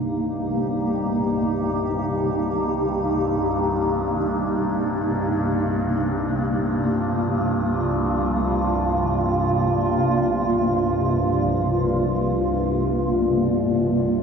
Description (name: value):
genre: dark ambient drone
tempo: free time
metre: none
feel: none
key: C minor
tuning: A4 = 440 Hz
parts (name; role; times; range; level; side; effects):
- granular cloud pad; sustained chords; 0.0-14.2 s; C3 to G4; -21 LUFS; equal; built-in reverb
- overtone-sweeping drone; drone; 0.0-14.2 s; C2 to G2; -25 LUFS; right 1 dB; chorus, built-in reverb
- quartz singing bowl; texture; 0.0-12.7 s; G3 to G4; -40 LUFS; left 7 dB; none
room: wet spring reverb, RT60 2.5 s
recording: nothing above 7.7 kHz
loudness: -20 LUFS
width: side -6 dB against mid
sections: 0.0-12.6 A section; 12.6-14.2 B section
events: fade-in on synth drone 0.0-12.6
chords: 0.0 Cm